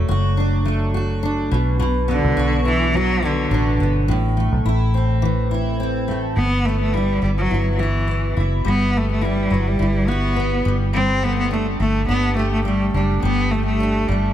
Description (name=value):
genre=acoustic pop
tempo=105 BPM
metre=4/4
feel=swing 55% on 16ths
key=unclear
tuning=A4 = 440 Hz
part: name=fingerpicked steel-string acoustic guitar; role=accompaniment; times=0.0-14.3 s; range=A2 to G4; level=-22 LUFS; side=equal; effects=double-tracked left and right
part: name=vintage muted fingered electric bass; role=bass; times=0.0-14.3 s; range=F#1 to C2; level=-20 LUFS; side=equal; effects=none
part: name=clear cello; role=melody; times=2.1-14.3 s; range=D3 to C4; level=-21 LUFS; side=equal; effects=ping-pong delay
room=light reverb, small room ambience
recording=none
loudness=-17 LUFS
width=side -11 dB against mid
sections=0.0-6.4 A section; 6.4-14.3 B section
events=none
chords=0.0 D; 1.5 Bm; 4.1 Am; 6.4 Emadd9; 10.7 Dsus4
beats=0.09 0.66 1.23 | 1.80 2.37 2.94 3.51 | 4.08 4.66 5.22 5.80 | 6.37 6.94 7.51 8.08 | 8.65 9.23 9.80 10.37 | 10.94 11.52 12.09 12.66 | 13.23 13.80